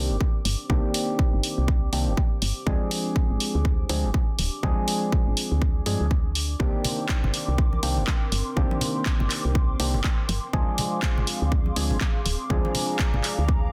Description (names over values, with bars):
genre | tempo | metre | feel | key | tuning
deep house | 122 BPM | 4/4 | swing 59% on 16ths | C minor | A4 = 440 Hz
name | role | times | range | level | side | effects
percussive organ stab | stabs | 0.0-13.7 s | Eb3 to Ab4 | -32 LUFS | equal | chorus, phaser, sidechain pumping, delay
woody FM bass | bass | 0.0-13.7 s | D1 to G2 | -28 LUFS | equal | sidechain pumping
deep dark ambient pad | texture | 0.1-13.7 s | C4 to D6 | -44 LUFS | equal | chorus, built-in reverb, sidechain pumping
electronic kick drum | drums | 0.2-13.6 s | none | -26 LUFS | equal | none
house drum kit | drums | 0.5-13.4 s | handclaps, hi-hat | -32 LUFS | equal | none
hollow soft pad | sustained chords | 6.6-13.7 s | Ab4 to D6 | -38 LUFS | equal | ensemble chorus, sidechain pumping
congas | percussion | 6.8-13.6 s | none | -35 LUFS | equal | none
room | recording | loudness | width
light reverb | dense, heavily limited modern master | -24 LUFS | mono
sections
0.0-13.7 A section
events
fade-in on ambient pad 0.0-13.7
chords
0.0 Cm9; 2.7 Dm7b5; 6.6 Cm9; 10.5 Dm7b5